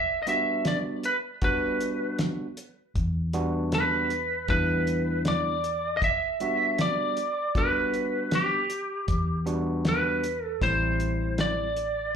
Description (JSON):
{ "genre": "straight-eighth soul blues", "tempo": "78 BPM", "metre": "4/4", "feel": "straight", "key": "E minor", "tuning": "A4 = 441 Hz", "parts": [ { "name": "lightly driven lead guitar", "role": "melody", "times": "0.0-12.2 s", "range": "G4 to E5", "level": "-26 LUFS", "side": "right 1 dB", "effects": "slapback echo" }, { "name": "vintage muted fingered electric bass", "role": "bass", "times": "0.0-12.1 s", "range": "A1 to E2", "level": "-30 LUFS", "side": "left 1 dB", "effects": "none" }, { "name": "overdriven tine electric piano", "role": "accompaniment", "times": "0.3-11.7 s", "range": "G3 to F#4", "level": "-31 LUFS", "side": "equal", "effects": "auto-pan, slapback echo" }, { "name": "cloth-damped thuddy drum kit", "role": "drums", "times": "0.3-12.0 s", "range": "hi-hat, kick drum, snare drum", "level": "-29 LUFS", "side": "equal", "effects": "slapback echo" } ], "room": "light reverb", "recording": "live gig heard through the venue's PA, club reverb", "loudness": "-24 LUFS", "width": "side -7 dB against mid", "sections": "0.0-12.2 A section", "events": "none", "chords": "0.0 Em7; 10.6 Am7" }